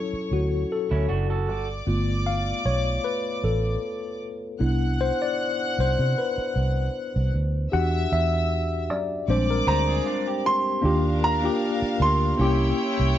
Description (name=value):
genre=soul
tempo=77 BPM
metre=4/4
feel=swing 54% on 16ths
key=unclear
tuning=A4 = 441 Hz
part: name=rich studio string section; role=second line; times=0.0-13.2 s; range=D4 to F#6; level=-32 LUFS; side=equal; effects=none
part: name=tine electric piano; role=accompaniment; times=0.0-13.2 s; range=F#3 to F#5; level=-26 LUFS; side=left 3 dB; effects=medium stereo tremolo
part: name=vintage muted fingered electric bass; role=bass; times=0.1-13.1 s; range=F#1 to C3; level=-24 LUFS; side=right 1 dB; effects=none
part: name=electric guitar through a small old amp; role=riff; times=0.9-1.7, 9.7-10.8 s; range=C#4 to C5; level=-32 LUFS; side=right 8 dB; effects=none
part: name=clear concert grand piano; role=melody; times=9.7-13.2 s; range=Bb5 to C6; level=-26 LUFS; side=right 2 dB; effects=none
room=light reverb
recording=nothing above 7.9 kHz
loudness=-22 LUFS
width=side -11 dB against mid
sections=0.0-10.8 A section; 10.8-13.2 B section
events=tine electric piano solo 0.0-10.8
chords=0.0 Dmaj7; 1.5 G9; 4.6 Cmaj7; 7.7 Em9; 9.3 Bb13; 10.8 Ebmaj9; 12.4 C7b9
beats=0.70 | 1.48 2.26 3.04 3.83 | 4.61 5.39 6.17 6.95 | 7.73 8.51 9.29 10.06 | 10.84 11.62 12.40 13.17